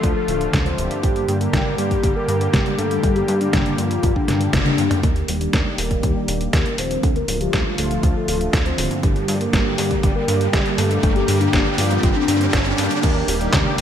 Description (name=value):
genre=italo disco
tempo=120 BPM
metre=4/4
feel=straight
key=G minor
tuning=A4 = 440 Hz
part: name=soft octave-layered synth lead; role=melody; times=0.0-13.8 s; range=D4 to D5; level=-23 LUFS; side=left 1 dB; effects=chorus, phaser, digital delay
part: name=warm analog pad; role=sustained chords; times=0.0-13.8 s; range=D3 to G4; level=-25 LUFS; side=equal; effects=chorus
part: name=chorused synth bass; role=bass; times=0.0-13.8 s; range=D1 to G2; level=-24 LUFS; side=equal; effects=none
part: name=detuned 8-bit digital drum machine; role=drums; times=0.0-13.8 s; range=crash cymbal, handclaps, hi-hat, snare drum, toms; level=-24 LUFS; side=equal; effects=overdrive, high-pass filter on hats, high-pass filter on snare, high-pass filter on toms, high-pass filter on cymbals, high-pass filter on room, gated reverb
part: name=electronic kick drum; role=drums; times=0.0-13.6 s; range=none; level=-21 LUFS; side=equal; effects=none
part: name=mellow synth brass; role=stabs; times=0.3-13.8 s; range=G2 to G4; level=-29 LUFS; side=left 2 dB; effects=chorus
part: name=riser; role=sound effects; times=6.9-13.0 s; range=none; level=-28 LUFS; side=right 1 dB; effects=none
room=moderate lush hall reverb, RT60 2.5 s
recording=bright 1980s-style digital production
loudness=-17 LUFS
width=side -9 dB against mid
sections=0.0-5.0 A section; 5.0-13.0 B section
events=drum fill 4.5-5.0; band accent 4.5; filter sweep on analog polysynth 5.0-13.0; filter sweep on analog synth pad 5.0-13.0; filter sweep on soft synth lead 5.0-13.0; riser 6.9-13.0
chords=0.0 Dm; 1.0 Gm; 5.0 Eb; 7.0 Dm; 9.0 Gm; 13.0 Eb